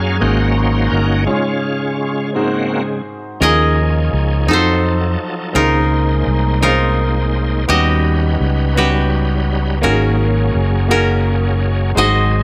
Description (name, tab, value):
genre	gospel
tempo	56 BPM (dotted quarters)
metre	6/8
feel	straight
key	unclear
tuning	A4 = 440 Hz
part	clear grand piano	accompaniment	0.0-12.4 s	Ab2 to F#5	-24 LUFS	equal	none
part	bright tonewheel organ	sustained chords	0.0-12.4 s	Db3 to F5	-23 LUFS	equal	fast rotary speaker, overdrive, chorus vibrato
part	fingered electric bass	bass	0.0-12.4 s	Gb1 to Gb2	-18 LUFS	equal	none
part	koto	melody	3.4-12.4 s	Db4 to Eb5	-20 LUFS	equal	none
room	light reverb, small room ambience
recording	none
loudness	-16 LUFS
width	mono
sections	0.0-3.4 A section; 3.4-12.4 B section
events	tonewheel organ solo 0.0-3.4; break 1.3-3.4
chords	0.2 Ab9sus4; 1.3 Db/Ab; 2.4 Ab7; 3.4 Eb9sus4; 4.5 F7b9; 5.6 Bbm11; 7.7 Eb7alt; 9.8 Ab9sus4